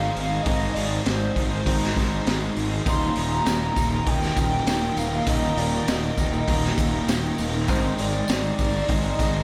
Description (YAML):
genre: rock, shoegaze and dream pop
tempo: 100 BPM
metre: 4/4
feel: straight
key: Eb major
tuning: A4 = 440 Hz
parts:
  - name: pure sine lead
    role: melody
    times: 0.0-9.4 s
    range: C5 to C6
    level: -32 LUFS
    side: equal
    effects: chorus, diffuse ambient delay
  - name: icy glass pad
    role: sustained chords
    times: 0.0-9.4 s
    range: Eb4 to Ab5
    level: -37 LUFS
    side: equal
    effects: chorus, built-in reverb
  - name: fingerpicked twelve-string acoustic guitar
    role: arpeggios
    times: 0.0-9.4 s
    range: Eb2 to Eb4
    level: -37 LUFS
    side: equal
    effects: none
  - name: electric guitar through a small old amp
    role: riff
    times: 0.0-9.4 s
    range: Eb2 to Eb4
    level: -34 LUFS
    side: equal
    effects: reverse reverb
  - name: thick fuzz guitar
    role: riff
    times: 0.0-9.4 s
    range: Eb2 to Ab3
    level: -31 LUFS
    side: equal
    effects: distortion, ensemble chorus
  - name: fuzz fingered electric bass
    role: bass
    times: 0.0-9.4 s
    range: Eb1 to Ab1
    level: -30 LUFS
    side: equal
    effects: overdrive
  - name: raw garage drum kit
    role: drums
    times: 0.2-9.3 s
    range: hi-hat, kick drum, snare drum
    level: -28 LUFS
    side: equal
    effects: none
  - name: tambourine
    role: percussion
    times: 2.9-9.3 s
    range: none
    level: -44 LUFS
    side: equal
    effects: none
room: moderate lush hall reverb, RT60 2.1 s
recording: dreamy mix soaked in reverb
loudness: -23 LUFS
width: mono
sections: 0.0-9.4 A section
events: none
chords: 0.0 Ab; 2.9 Eb; 7.7 Ab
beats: | 0.47 1.07 1.67 2.27 | 2.87 3.47 4.07 4.67 | 5.27 5.88 6.48 7.08 | 7.68 8.28 8.89